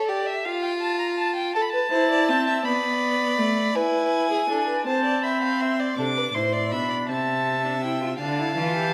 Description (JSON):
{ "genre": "classical, baroque-style fugue for string quartet", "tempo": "54 BPM (dotted quarters)", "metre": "6/8", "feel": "straight", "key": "unclear", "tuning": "A4 = 440 Hz", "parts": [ { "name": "rich violin", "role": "melody", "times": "0.0-8.9 s", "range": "D5 to D6", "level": "-28 LUFS", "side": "equal", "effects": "none" }, { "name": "rich violin", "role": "second line", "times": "0.0-8.9 s", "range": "F4 to F5", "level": "-29 LUFS", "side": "equal", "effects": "none" }, { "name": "rich viola", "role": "accompaniment", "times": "1.9-8.9 s", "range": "A3 to G4", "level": "-28 LUFS", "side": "equal", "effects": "none" }, { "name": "rich cello", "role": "bass", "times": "6.0-8.9 s", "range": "A2 to E3", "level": "-30 LUFS", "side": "equal", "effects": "none" } ], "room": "wet recital hall reverb, RT60 1.6 s", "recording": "none", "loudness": "-24 LUFS", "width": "mono", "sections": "0.0-6.0 A section; 6.0-8.9 B section", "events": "none", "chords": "0.5 Fadd9; 1.5 Am; 2.6 Asus24; 3.8 E; 4.9 Am/C; 6.0 C; 7.1 Am/C", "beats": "0.45 | 1.55 2.65 | 3.75 4.86 | 5.98 7.09 | 8.20" }